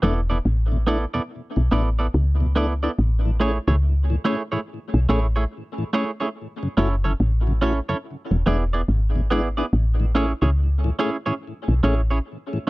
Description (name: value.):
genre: reggae.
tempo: 71 BPM.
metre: 4/4.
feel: swing 64% on 16ths.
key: A major.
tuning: A4 = 441 Hz.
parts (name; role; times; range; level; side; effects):
mellow tonewheel organ; accompaniment; 0.0-12.7 s; E2 to G#4; -28 LUFS; left 2 dB; slow rotary speaker, tape echo.
semi-hollow electric guitar; accompaniment; 0.0-12.7 s; A3 to D5; -25 LUFS; right 3 dB; tape echo.
woody FM bass; bass; 0.0-12.2 s; E1 to C#2; -20 LUFS; equal; none.
room: little or no reverb.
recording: dry, close 1970s-style studio recording.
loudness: -20 LUFS.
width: side -20 dB against mid.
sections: 0.0-3.0 A section; 3.0-12.7 B section.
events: none.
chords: 0.0 E7sus4; 3.0 Amaj7; 6.3 F#m7; 8.0 E7; 9.7 Amaj7.